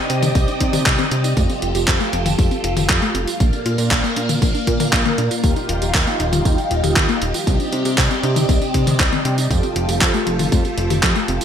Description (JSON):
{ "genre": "italo disco", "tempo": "118 BPM", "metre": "4/4", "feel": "straight", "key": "C dorian", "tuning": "A4 = 440 Hz", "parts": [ { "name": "string machine, full ensemble", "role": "sustained chords", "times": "0.0-11.4 s", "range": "Bb3 to F5", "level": "-22 LUFS", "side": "right 1 dB", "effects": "phaser, ensemble chorus, vintage 12-bit sampler grit" }, { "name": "warbly dusty pluck", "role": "arpeggios", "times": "0.0-11.4 s", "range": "A3 to D5", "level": "-26 LUFS", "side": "left 4 dB", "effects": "chorus, digital delay" }, { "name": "fat analog bass", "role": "bass", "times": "0.1-11.4 s", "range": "Eb1 to C3", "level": "-22 LUFS", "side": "equal", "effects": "none" }, { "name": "gated 80s digital drum machine", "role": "drums", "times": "0.1-11.4 s", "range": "handclaps, hi-hat, tambourine, toms", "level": "-21 LUFS", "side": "equal", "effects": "gated reverb, overdrive, studio reverb" }, { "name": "electronic kick drum", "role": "drums", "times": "0.4-11.1 s", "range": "none", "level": "-19 LUFS", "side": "equal", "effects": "studio reverb" } ], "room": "light reverb", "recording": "bright 1980s-style digital production", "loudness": "-15 LUFS", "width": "side -8 dB against mid", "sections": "0.0-11.4 A section", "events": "none", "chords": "0.0 Cmadd9; 1.4 Fadd9; 3.4 Bb; 5.4 Ebadd9; 7.5 Cmadd9; 9.5 Fadd9" }